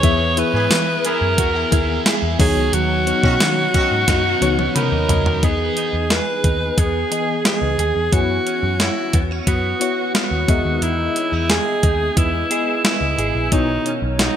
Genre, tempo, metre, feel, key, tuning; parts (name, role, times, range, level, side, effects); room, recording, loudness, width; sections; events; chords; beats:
1980s-style pop; 89 BPM; 4/4; straight; A4 = 440 Hz
bright alto saxophone; melody; 0.0-14.4 s; D#4 to C#5; -20 LUFS; equal; digital delay
FM electric piano with tremolo; accompaniment; 0.0-14.4 s; B2 to B5; -24 LUFS; left 6 dB
high-gain distorted guitar; accompaniment; 0.0-5.9 s; B2 to E4; -28 LUFS; right 4 dB; distortion, lush chorus
direct-recorded clean electric guitar; riff; 0.0-14.4 s; D#3 to G#4; -27 LUFS; right 5 dB; ensemble chorus, digital delay
vintage muted picked electric bass; bass; 0.0-14.3 s; G#1 to E3; -22 LUFS; equal
clean 12-bit digital drum machine; drums; 0.0-14.4 s; hi-hat, kick drum, snare drum, tambourine, toms; -19 LUFS; equal
warm horn section; stabs; 0.5-4.0 s; D#3 to G#4; -28 LUFS; right 2 dB; digital delay
moderate plate reverb, RT60 1.6 s, digital ambience; bright 1980s-style digital production; -16 LUFS; side -9 dB against mid
0.0-5.4 A section; 5.4-14.4 B section
drum fill 4.1-5.4; FM electric piano fill 4.4-5.4
0.0 E; 2.4 Badd9; 5.4 Emaj7; 8.1 F#7sus4; 10.5 Emaj7; 13.5 Badd9
| 0.04 0.71 1.39 2.06 | 2.73 3.41 4.08 4.76 | 5.43 6.10 6.78 7.45 | 8.13 8.80 9.47 10.15 | 10.82 11.50 12.17 12.85 | 13.52 14.19